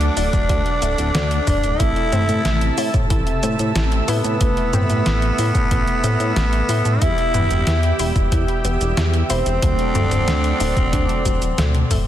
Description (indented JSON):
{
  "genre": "synthwave",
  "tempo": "92 BPM",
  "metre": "4/4",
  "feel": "straight",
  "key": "unclear",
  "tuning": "A4 = 440 Hz",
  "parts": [
    { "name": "growling tenor saxophone", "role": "melody", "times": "0.0-12.1 s", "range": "B3 to E4", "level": "-23 LUFS", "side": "equal", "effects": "tape echo" },
    { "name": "FM electric piano with soft pad layer", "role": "second line", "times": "0.0-12.1 s", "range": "B4 to E5", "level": "-31 LUFS", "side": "left 1 dB", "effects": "none" },
    { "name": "warm analog pad", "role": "sustained chords", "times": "0.0-12.1 s", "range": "C3 to E6", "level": "-28 LUFS", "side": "right 1 dB", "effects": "chorus, sidechain pumping" },
    { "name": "analog pluck", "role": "arpeggios", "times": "0.0-12.1 s", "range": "D3 to E4", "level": "-30 LUFS", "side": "left 5 dB", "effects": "chorus, tape echo" },
    { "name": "mellow synth brass", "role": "stabs", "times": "0.0-11.2 s", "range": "F#3 to A4", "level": "-28 LUFS", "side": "right 3 dB", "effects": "chorus, tape echo" },
    { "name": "chorused synth bass", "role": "bass", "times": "0.0-12.0 s", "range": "D1 to A2", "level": "-20 LUFS", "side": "equal", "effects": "sidechain pumping" },
    { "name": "detuned 8-bit digital drum machine", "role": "drums", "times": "0.0-12.0 s", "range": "hi-hat, shaker, snare drum, toms", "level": "-24 LUFS", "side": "equal", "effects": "overdrive" },
    { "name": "electronic kick drum", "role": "drums", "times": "0.3-12.0 s", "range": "none", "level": "-21 LUFS", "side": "equal", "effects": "none" }
  ],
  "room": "light reverb, digital ambience",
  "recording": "dense, heavily limited modern master",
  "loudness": "-16 LUFS",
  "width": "side -11 dB against mid",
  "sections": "0.0-12.1 A section",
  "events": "drum fill 11.6-12.1",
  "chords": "0.0 D; 1.8 Am; 7.0 Em; 9.6 D"
}